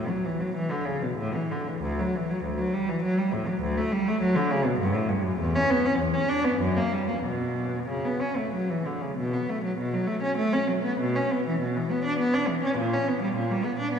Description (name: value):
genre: classical, baroque-style suite movement for unaccompanied cello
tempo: 91-104 BPM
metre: 3/4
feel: rubato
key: D major, B minor from 5.4 s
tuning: A4 = 439 Hz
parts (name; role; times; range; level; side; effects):
- rich cello; solo; 0.0-14.0 s; D2 to D4; -24 LUFS; equal; none
room: wet cathedral reverb, RT60 5.5 s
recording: heard from further back in the room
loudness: -24 LUFS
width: side -7 dB against mid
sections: 0.0-9.2 A section; 9.2-14.0 B section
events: none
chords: none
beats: 0.52 1.15 | 1.80 2.43 3.02 | 3.61 4.20 4.78 | 5.38 5.98 6.58 | 7.21 7.87 8.51 | 9.15 9.76 10.36 | 10.98 11.59 12.18 | 12.76 13.34 13.93